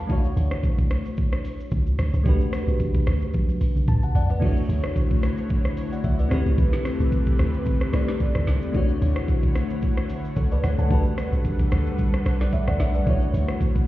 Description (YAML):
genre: amapiano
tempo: 111 BPM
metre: 4/4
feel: swing 55% on 16ths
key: D major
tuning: A4 = 440 Hz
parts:
  - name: bell-like FM electric piano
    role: accompaniment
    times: 0.0-13.9 s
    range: A3 to B5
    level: -29 LUFS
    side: left 2 dB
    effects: chorus, phaser
  - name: deep log drum bass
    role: bass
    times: 0.0-13.8 s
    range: B1 to D2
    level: -23 LUFS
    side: equal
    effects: none
  - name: smooth R&B drum kit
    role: drums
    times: 0.1-13.9 s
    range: crash cymbal, hi-hat, kick drum, rim click, shaker, snare drum, toms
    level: -23 LUFS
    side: equal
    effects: none
  - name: airy breathy pad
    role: sustained chords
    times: 4.7-13.9 s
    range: D3 to F#5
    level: -30 LUFS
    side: equal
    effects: chorus
room: little or no reverb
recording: heard muffled through a wall, stone room reverb, EQ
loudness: -20 LUFS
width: side -16 dB against mid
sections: 0.0-13.9 A section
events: drum fill 3.3-4.4; FM electric piano fill 3.6-4.4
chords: 0.1 Dmaj9; 2.3 Gmaj9; 4.4 Dmaj9; 6.3 Cmaj13; 8.7 Dmaj9; 10.9 Gmaj9; 13.1 Dmaj9